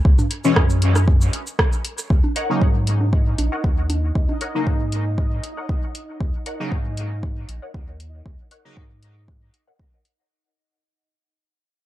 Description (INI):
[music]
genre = dub techno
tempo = 117 BPM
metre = 4/4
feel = straight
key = Eb minor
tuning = A4 = 440 Hz
[part]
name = warm sub bass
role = bass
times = 0.1-9.5 s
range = Bb1 to Ab2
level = -22 LUFS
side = equal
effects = sidechain pumping
[part]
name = electronic kick drum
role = drums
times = 0.1-9.9 s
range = none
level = -19 LUFS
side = equal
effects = none
[part]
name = deep house drum kit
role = drums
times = 0.2-10.2 s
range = cabasa, hi-hat, rim click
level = -25 LUFS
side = right 1 dB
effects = dub echo
[part]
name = electronic toms and congas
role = percussion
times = 0.2-4.4 s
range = none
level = -28 LUFS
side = right 2 dB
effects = overdrive, sidechain pumping on toms, sidechain pumping on perc, dub echo
[part]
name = resonant sweep polysynth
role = stabs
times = 0.4-8.8 s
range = Cb3 to Eb4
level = -24 LUFS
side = left 2 dB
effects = chorus, phaser, sidechain pumping, dub echo
[part]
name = bubbling stepped-filter texture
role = texture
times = 2.5-10.3 s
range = Eb4 to Eb5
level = -35 LUFS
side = right 2 dB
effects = chorus, built-in reverb, sidechain pumping
[part]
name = filtered dub chord stab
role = riff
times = 2.4-9.8 s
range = Bb4 to Gb5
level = -32 LUFS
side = left 1 dB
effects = phaser, ensemble chorus, sidechain pumping, dub echo
[sound]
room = little or no reverb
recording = dark, warm production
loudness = -18 LUFS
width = side -14 dB against mid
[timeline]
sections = 0.0-2.1 A section; 2.1-10.3 B section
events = fade-out 2.1-10.3; filter sweep on synth stab 2.1-10.3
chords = 0.0 N.C.; 2.1 Ebm7